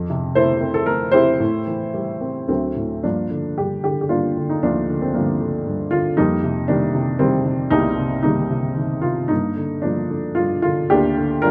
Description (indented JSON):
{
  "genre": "classical, lyrical solo piano",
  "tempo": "114 BPM",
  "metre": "3/4",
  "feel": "rubato",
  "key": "D minor, G minor from 3.0 s",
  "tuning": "A4 = 440 Hz",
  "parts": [
    { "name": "dark upright piano", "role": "solo", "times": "0.0-11.5 s", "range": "C2 to C5", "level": "-20 LUFS", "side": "equal", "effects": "none" }
  ],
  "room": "little or no reverb",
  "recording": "close, detailed microphones",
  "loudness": "-20 LUFS",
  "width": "mono",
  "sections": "0.0-3.0 A section; 3.0-11.5 B section",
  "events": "none",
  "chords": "0.0 Fmaj7; 1.4 Am7; 2.5 D7; 3.0 Gm7; 6.2 F9sus4; 9.3 Gm7"
}